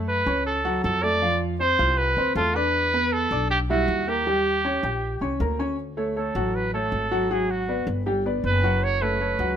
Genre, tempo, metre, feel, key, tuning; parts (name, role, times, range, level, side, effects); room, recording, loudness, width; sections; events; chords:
Afro-Cuban jazz; 158 BPM; 4/4; straight; D major; A4 = 439 Hz
warm concert grand piano; accompaniment; 0.0-9.6 s; F3 to G6; -26 LUFS; equal
upright bass; bass; 0.0-9.6 s; F#1 to F#2; -28 LUFS; left 1 dB
clear trumpet; melody; 0.1-9.6 s; F4 to D5; -24 LUFS; right 2 dB
light reverb; minimal, uncompressed stereo recording; -21 LUFS; side -9 dB against mid
0.0-5.8 A section; 5.8-9.6 B section
trumpet solo 5.8-9.6
0.0 F#m; 1.2 F; 2.7 Em7; 4.3 Eb7; 5.8 Dmaj7; 7.3 G#m7b5; 8.1 G; 8.8 F#m